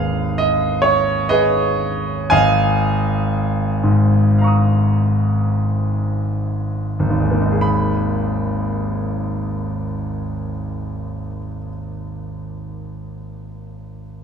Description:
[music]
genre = classical, impressionist solo piano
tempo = 27-47 BPM (dotted quarters)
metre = 9/8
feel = rubato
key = G# minor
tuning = A4 = 441 Hz
[part]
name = warm grand piano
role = solo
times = 0.0-14.2 s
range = G#1 to D#6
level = -17 LUFS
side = equal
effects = none
[sound]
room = moderate recital hall reverb, RT60 1.4 s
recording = studio ambience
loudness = -16 LUFS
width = side -6 dB against mid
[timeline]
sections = 0.0-7.6 A section; 7.6-13.7 B section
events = slowing down 0.0-7.6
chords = 0.0 G#m6; 2.3 C#69/G#; 7.6 G#madd9

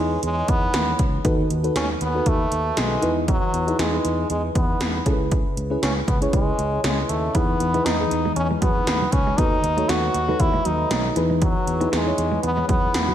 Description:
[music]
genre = 1980s-style pop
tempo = 118 BPM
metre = 4/4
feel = swing 55% on 16ths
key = E major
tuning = A4 = 441 Hz
[part]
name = French horn with straight mute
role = melody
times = 0.0-13.1 s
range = F#3 to F#4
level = -24 LUFS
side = equal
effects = slapback echo
[part]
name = mellow FM electric piano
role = accompaniment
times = 0.0-13.1 s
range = C#3 to C#5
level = -25 LUFS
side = left 1 dB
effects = chorus, slapback echo
[part]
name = fretless electric bass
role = bass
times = 0.0-13.1 s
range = B1 to E2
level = -26 LUFS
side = equal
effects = none
[part]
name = 80s electronic pad drums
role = drums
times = 0.2-13.1 s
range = hi-hat, kick drum, snare drum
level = -24 LUFS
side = equal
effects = none
[part]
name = semi-hollow electric guitar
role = riff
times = 7.3-13.1 s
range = F#3 to E4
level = -30 LUFS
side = right 3 dB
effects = none
[sound]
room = moderate scoring stage reverb, RT60 1.6 s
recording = big arena sound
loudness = -19 LUFS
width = side -10 dB against mid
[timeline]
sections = 0.0-13.1 A section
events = none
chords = 0.0 C#m7; 1.2 B7/D#; 3.0 Emaj7; 5.1 C#m7; 7.3 Emaj7; 9.4 B7/D#; 11.2 Emaj7

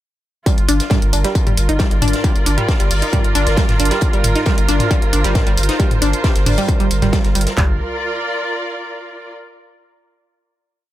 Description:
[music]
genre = driving peak-time techno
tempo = 135 BPM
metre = 4/4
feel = straight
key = G minor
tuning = A4 = 439 Hz
[part]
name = analog pluck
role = riff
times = 0.5-7.8 s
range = G3 to Eb4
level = -21 LUFS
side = equal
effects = chorus, phaser, sidechain pumping, tape echo
[part]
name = open jazz drum kit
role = drums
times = 0.5-7.6 s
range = hi-hat, snare drum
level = -28 LUFS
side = left 3 dB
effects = sidechain pumping on hats, high-pass filter on hats, high-pass filter on snare, high-pass filter on room
[part]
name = techno drum kit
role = drums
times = 0.5-7.7 s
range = handclaps, kick drum, toms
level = -16 LUFS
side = equal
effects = distortion, overdrive
[part]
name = techno drum kit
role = drums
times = 0.5-7.6 s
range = hi-hat, toms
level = -22 LUFS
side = equal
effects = overdrive, sidechain pumping on hats, sidechain pumping on toms
[part]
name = muted studio string section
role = texture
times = 0.5-9.3 s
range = F4 to D5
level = -22 LUFS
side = right 2 dB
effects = sidechain pumping
[part]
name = warm sub bass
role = bass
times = 0.6-7.8 s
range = G1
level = -19 LUFS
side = equal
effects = overdrive, sidechain pumping, low-pass filter
[sound]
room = studio reverb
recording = none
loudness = -14 LUFS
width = side -14 dB against mid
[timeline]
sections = 0.5-7.6 drop; 7.6-9.4 final chord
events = drop 0.5-7.6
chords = 0.5 Gm

